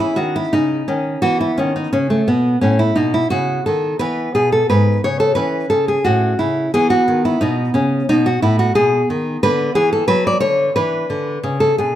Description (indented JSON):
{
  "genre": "classical, baroque-style dance for nylon-string guitar",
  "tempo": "88 BPM",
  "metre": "4/4",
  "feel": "rubato",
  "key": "E major",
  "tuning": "A4 = 438 Hz",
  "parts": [
    { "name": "nylon-string guitar", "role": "solo", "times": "0.0-12.0 s", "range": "G#2 to D5", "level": "-14 LUFS", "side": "equal", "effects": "none" }
  ],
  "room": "moderate recital hall reverb, RT60 1.3 s",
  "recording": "minimal, uncompressed stereo recording",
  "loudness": "-14 LUFS",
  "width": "side -12 dB against mid",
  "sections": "0.0-12.0 A section",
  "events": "none",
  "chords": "0.0 C#madd9; 1.2 B7; 4.0 E; 5.4 A; 6.7 E5; 9.4 Bm/D; 10.8 E5",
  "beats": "0.54 | 1.23 1.93 2.62 3.31 | 4.00 4.69 5.37 6.05 | 6.74 7.41 8.08 8.76 | 9.42 10.10 10.77 11.45"
}